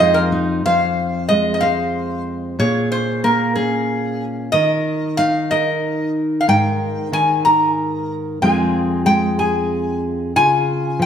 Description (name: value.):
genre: acoustic folk duo or small band.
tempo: 62 BPM (dotted quarters).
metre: 6/8.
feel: straight.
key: F minor.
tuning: A4 = 440 Hz.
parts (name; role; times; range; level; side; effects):
lap resonator guitar; melody; 0.0-11.1 s; Ab4 to Bb5; -18 LUFS; equal; none.
fingerpicked steel-string acoustic guitar; accompaniment; 0.0-11.1 s; F2 to C5; -19 LUFS; equal; none.
room: wet scoring stage reverb, RT60 1.7 s.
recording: none.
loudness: -16 LUFS.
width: side -8 dB against mid.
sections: 0.6-11.1 A section.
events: none.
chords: 0.0 Fm7; 0.6 Fm; 2.6 Bbm7; 4.5 Eb5; 6.5 Absus2; 8.4 Fm; 10.4 Db.